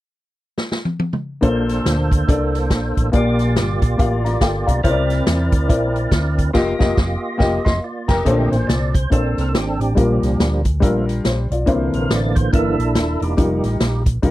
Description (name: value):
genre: uptempo gospel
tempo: 141 BPM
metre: 4/4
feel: swing 60% on 8ths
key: Bb major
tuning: A4 = 444 Hz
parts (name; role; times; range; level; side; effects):
- swinging big-band drum kit; drums; 0.6-14.3 s; crash cymbal, hi-hat, kick drum, snare drum, toms; -18 LUFS; equal; none
- dark upright piano; accompaniment; 1.4-14.3 s; Bb2 to C6; -20 LUFS; left 2 dB; none
- percussive tonewheel organ; sustained chords; 1.4-14.0 s; D3 to Eb5; -23 LUFS; right 2 dB; overdrive, chorus vibrato, slow rotary speaker
- fingered electric bass; bass; 1.4-14.3 s; Eb1 to E2; -21 LUFS; equal; none
room: little or no reverb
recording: dry, close 1970s-style studio recording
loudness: -16 LUFS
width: side -16 dB against mid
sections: 0.0-1.4 A section; 1.4-8.3 B section; 8.3-14.3 C section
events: drum fill 0.6-1.4; upright piano fill 4.0-4.8; band accent 6.5-8.3; tonewheel organ solo 8.3-14.3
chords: 0.0 N.C.; 1.4 Bbmaj9; 3.1 Gm7; 4.8 C9; 6.5 F9sus4; 8.3 Bbmaj9; 10.0 Gm7/Bb; 11.7 C9; 13.4 F9sus4